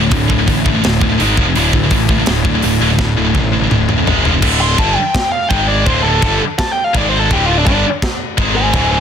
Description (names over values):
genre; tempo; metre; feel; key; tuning
heavy metal; 167 BPM; 4/4; straight; D minor; A4 = 440 Hz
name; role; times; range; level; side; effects
fuzz guitar; riff; 0.0-4.1 s; D2 to D3; -20 LUFS; equal; distortion
heavy high-gain guitar; riff; 0.0-9.0 s; D2 to G#3; -18 LUFS; left 13 dB; distortion
high-gain distorted guitar; riff; 0.0-9.0 s; D2 to G#3; -18 LUFS; right 12 dB; distortion
fuzz picked electric bass; bass; 0.0-9.0 s; D1 to A1; -17 LUFS; equal; overdrive
tight metal drum kit; drums; 0.1-8.8 s; china cymbal, crash cymbal, hi-hat, kick drum, snare drum, toms; -18 LUFS; equal; none
high-gain lead guitar; melody; 4.6-9.0 s; D4 to C6; -17 LUFS; equal; distortion, digital delay
room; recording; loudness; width
small room ambience; dense, heavily limited modern master; -11 LUFS; side -8 dB against mid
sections
0.0-4.4 A section; 4.4-9.0 B section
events
drum fill 3.0-4.4; lead electric guitar solo 4.4-9.0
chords
0.0 D5; 1.2 G#5; 1.4 F5; 1.6 D5; 4.1 G#5; 4.2 F5; 4.4 D5; 5.5 G#5; 5.9 D5; 6.9 G#5; 7.3 D5; 8.4 G#5